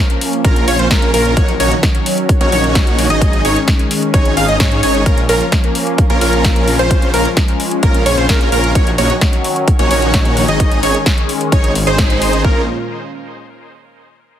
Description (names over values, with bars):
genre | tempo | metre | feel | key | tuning
EDM, festival progressive house | 130 BPM | 4/4 | straight | Bb minor | A4 = 439 Hz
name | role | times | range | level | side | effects
lush unison pad | sustained chords | 0.0-12.7 s | Bb2 to F4 | -20 LUFS | left 1 dB | chorus, phaser, sidechain pumping
big-room dance drum kit | drums | 0.1-12.4 s | hi-hat, snare drum | -19 LUFS | left 1 dB | none
plucky unison lead | arpeggios | 0.4-12.6 s | Bb4 to F5 | -19 LUFS | equal | sidechain pumping, ping-pong delay
dense compressed supersaw | riff | 0.4-12.6 s | Bb3 to F5 | -19 LUFS | right 1 dB | cassette tape, sidechain pumping, ping-pong delay
detuned saw bass | bass | 0.4-12.7 s | Ab1 to Ab2 | -19 LUFS | equal | tube saturation, sidechain pumping
electronic kick drum | drums | 0.4-12.6 s | none | -13 LUFS | equal | none
room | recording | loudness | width
light reverb, digital ambience | heavily compressed radio sound, multiband compression | -11 LUFS | side -10 dB against mid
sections
0.0-12.4 A section; 12.4-14.3 B section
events
drop 0.0-12.4; band accent 12.0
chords
0.0 Bbm; 1.4 Ebm7/Bb; 3.2 Absus4; 5.1 Bbm; 8.8 Ebm7/Bb; 10.6 Absus4; 12.4 Bbm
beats
0.45 0.91 | 1.37 1.83 2.29 2.75 | 3.21 3.68 4.14 4.60 | 5.06 5.52 5.98 6.45 | 6.91 7.37 7.83 8.29 | 8.75 9.21 9.68 10.14 | 10.60 11.06 11.52 11.98 | 12.45